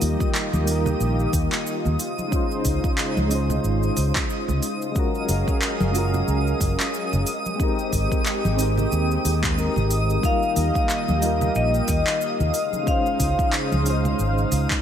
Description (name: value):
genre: sunset chillout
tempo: 91 BPM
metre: 4/4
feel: swing 57% on 16ths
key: unclear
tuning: A4 = 441 Hz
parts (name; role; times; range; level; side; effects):
- soft electric-piano-like synth keys; accompaniment; 0.0-14.8 s; G3 to C5; -28 LUFS; moving between left 5 dB and right 5 dB; chorus, tremolo, auto-pan, low-pass filter, digital delay
- lush unison pad; sustained chords; 0.0-14.8 s; Db3 to F5; -28 LUFS; equal; chorus
- fretless electric bass; bass; 0.0-14.7 s; Gb1 to Eb2; -22 LUFS; equal; none
- deep house drum kit; drums; 0.0-14.8 s; handclaps, hi-hat, shaker; -28 LUFS; right 1 dB; none
- twinkling granular texture; texture; 0.0-14.8 s; Eb5 to Eb6; -32 LUFS; left 1 dB; built-in reverb
- electronic kick drum; drums; 0.2-14.8 s; none; -25 LUFS; equal; none
- congas; percussion; 0.5-14.2 s; none; -30 LUFS; right 1 dB; none
- vibraphone with hard mallets; melody; 10.3-13.5 s; Eb5 to F5; -25 LUFS; left 2 dB; digital delay
room: light reverb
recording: none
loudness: -20 LUFS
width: side -9 dB against mid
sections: 0.0-14.8 A section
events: filter sweep on synth keys 0.0-14.8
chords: 0.0 Ebadd9; 2.0 Dbmaj9; 5.0 Gbmaj9; 7.3 Abmaj9; 10.2 Ebadd9; 12.5 Dbmaj9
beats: 0.34 1.00 1.66 | 2.32 2.98 3.64 4.30 | 4.96 5.62 6.28 6.94 | 7.60 8.26 8.92 9.57 | 10.23 10.89 11.55 12.21 | 12.87 13.53 14.19